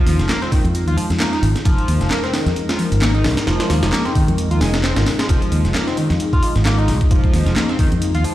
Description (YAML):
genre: breakbeat, breaks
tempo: 132 BPM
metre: 4/4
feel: swing 56% on 16ths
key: F minor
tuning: A4 = 439 Hz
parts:
  - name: dark analog pad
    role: sustained chords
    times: 0.0-8.3 s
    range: Ab3 to Bb4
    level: -24 LUFS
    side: left 1 dB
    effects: chorus, sidechain pumping
  - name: overdriven synth lead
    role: riff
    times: 0.0-8.3 s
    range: Eb3 to F4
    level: -22 LUFS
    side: equal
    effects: distortion, chorus, phaser, digital delay
  - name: fingered electric bass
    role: bass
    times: 0.1-8.2 s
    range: F1 to F2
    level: -18 LUFS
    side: equal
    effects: none
  - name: breakbeat sampler-style drum kit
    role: drums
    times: 0.1-8.3 s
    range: hi-hat, kick drum, snare drum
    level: -19 LUFS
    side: equal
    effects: studio reverb
  - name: house drum kit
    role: drums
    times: 0.1-8.3 s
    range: handclaps, hi-hat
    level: -29 LUFS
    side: equal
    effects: overdrive, studio reverb
room: light reverb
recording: played on a big sound system in a bare room, stone room reverb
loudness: -15 LUFS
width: side -14 dB against mid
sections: 0.0-8.3 A section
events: none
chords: 0.0 Fm7